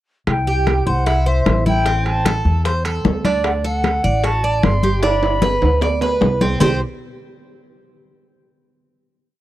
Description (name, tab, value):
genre	latin, Cuban son and guajira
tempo	151 BPM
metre	4/4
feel	straight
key	C lydian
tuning	A4 = 437 Hz
part	silver concert flute	melody	0.3-6.8 s	E5 to C6	-23 LUFS	left 1 dB	none
part	upright bass	bass	0.3-6.8 s	G1 to E2	-19 LUFS	equal	none
part	bongos	percussion	0.3-6.7 s	none	-25 LUFS	left 8 dB	none
part	congas	percussion	0.3-6.7 s	none	-21 LUFS	left 1 dB	none
part	timbales	percussion	0.3-6.7 s	none	-25 LUFS	right 5 dB	none
part	Cuban tres	arpeggios	0.5-6.8 s	C4 to D5	-21 LUFS	right 3 dB	none
room	small room ambience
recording	dry, close 1970s-style studio recording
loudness	-15 LUFS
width	side -14 dB against mid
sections	0.3-6.6 A section; 6.6-8.2 final chord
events	drum fill 5.0-6.6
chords	0.3 C; 1.9 Am; 3.4 D; 5.0 G; 6.6 C5